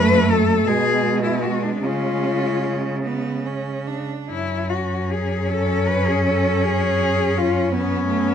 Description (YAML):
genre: classical, lyrical piece for cello ensemble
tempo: 47-57 BPM (dotted quarters)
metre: 6/8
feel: rubato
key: F# minor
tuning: A4 = 440 Hz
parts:
  - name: rich cello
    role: melody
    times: 0.0-8.3 s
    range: C#4 to B4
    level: -22 LUFS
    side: left 6 dB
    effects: none
  - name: rich cello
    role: second line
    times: 0.0-8.3 s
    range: G#3 to D4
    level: -24 LUFS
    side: right 8 dB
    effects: none
  - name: clear cello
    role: accompaniment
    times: 0.0-8.3 s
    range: G#3 to C#4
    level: -26 LUFS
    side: left 2 dB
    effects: none
  - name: rich cello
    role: bass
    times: 0.0-8.3 s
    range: F#2 to C#3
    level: -23 LUFS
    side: right 1 dB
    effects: none
room: light reverb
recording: dark, warm production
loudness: -18 LUFS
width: side -8 dB against mid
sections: 0.0-8.3 A section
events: none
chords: 0.0 F#m; 0.7 B5; 1.8 C#; 4.3 F#5; 6.6 C#5/F#